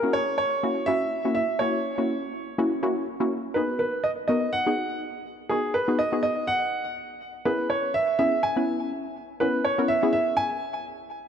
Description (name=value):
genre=pop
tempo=123 BPM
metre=4/4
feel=straight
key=unclear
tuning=A4 = 440 Hz
part: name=clear baby grand piano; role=melody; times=0.0-10.8 s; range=G#4 to G#5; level=-25 LUFS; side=right 2 dB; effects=digital delay
part: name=wide unison pluck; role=accompaniment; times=0.0-10.5 s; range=A#3 to B4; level=-27 LUFS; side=left 2 dB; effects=none
room=moderate lush hall reverb, RT60 2.5 s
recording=dark, warm production, faint mains hum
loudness=-23 LUFS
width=side -8 dB against mid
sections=0.0-3.6 A section; 3.6-11.3 B section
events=build-up 3.6-11.3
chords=0.0 F#7; 3.6 G#m7; 7.5 C#m7